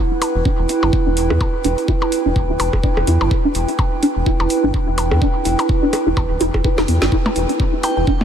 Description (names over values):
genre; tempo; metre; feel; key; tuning
minimal techno; 126 BPM; 4/4; swing 57% on 16ths; E minor; A4 = 440 Hz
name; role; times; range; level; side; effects
warbly tape-like pad; texture; 0.0-8.2 s; E4 to G5; -21 LUFS; right 3 dB; chorus, built-in reverb, sidechain pumping
resonant blip pluck; riff; 0.1-8.1 s; B3 to B4; -22 LUFS; equal; phaser, ensemble chorus, sidechain pumping, ping-pong delay
garage drum kit; drums; 0.2-7.9 s; hi-hat, snare drum; -26 LUFS; equal; none
percussion blips; percussion; 0.2-8.2 s; none; -26 LUFS; left 1 dB; diffuse ambient delay
round analog bass; bass; 0.4-8.2 s; D1 to E2; -19 LUFS; equal; sidechain pumping
electronic kick drum; drums; 0.5-8.2 s; none; -18 LUFS; equal; none
glassy synth bell; melody; 7.8-8.0 s; G5; -23 LUFS; left 1 dB; chorus
room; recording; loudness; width
light reverb; lossy compression artefacts; -15 LUFS; side -8 dB against mid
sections
0.0-8.2 A section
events
filter sweep on synth arpeggio sound 0.0-8.2; drum fill 6.8-7.1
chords
0.0 Em